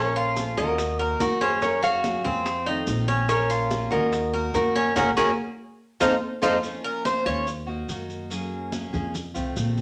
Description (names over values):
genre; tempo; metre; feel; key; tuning
latin, Cuban son and guajira; 144 BPM; 4/4; straight; Bb minor; A4 = 437 Hz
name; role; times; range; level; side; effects
nylon-string guitar; melody; 0.0-6.6 s; Ab4 to F5; -29 LUFS; equal; none
flamenco guitar; second line; 0.0-6.6 s; F4 to Db5; -32 LUFS; equal; none
picked steel-string acoustic guitar; accompaniment; 0.0-9.8 s; Eb3 to Ab4; -36 LUFS; equal; none
Cuban tres; arpeggios; 0.0-7.5 s; Bb3 to Eb5; -28 LUFS; equal; none
upright bass; bass; 0.0-9.8 s; Gb1 to Gb2; -33 LUFS; equal; none
congas; percussion; 0.2-9.8 s; none; -37 LUFS; equal; none
bongos; percussion; 0.4-6.5 s; none; -40 LUFS; equal; none
maracas; percussion; 0.4-9.8 s; none; -42 LUFS; equal; none
room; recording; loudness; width
wet studio reverb, RT60 0.8 s; none; -25 LUFS; mono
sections
0.0-6.6 A section; 6.6-9.8 B section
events
band accent 5.0-6.6; Cuban tres solo 6.6-9.8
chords
0.0 Bbm; 0.8 Ebm; 1.6 Gbadd9; 2.5 F7; 3.3 Bbm; 4.1 Ebm; 5.0 Gbadd9; 5.8 F7; 6.6 Bbm; 7.5 Ebm; 8.3 Gbadd9; 9.1 F7